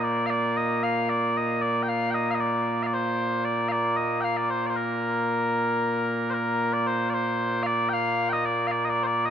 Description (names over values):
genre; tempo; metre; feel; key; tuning
scottish traditional, Scottish pipe music; 76 BPM (dotted quarters); 6/8; straight; Bb major; A4 = 440 Hz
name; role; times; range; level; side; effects
mellow small bagpipes; solo; 0.0-9.3 s; Bb2 to G5; -23 LUFS; equal; none
room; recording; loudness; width
moderate huge ambient reverb, RT60 4.4 s; dark, warm production; -23 LUFS; side -8 dB against mid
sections
0.0-6.4 A section; 6.4-9.3 B section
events
none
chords
none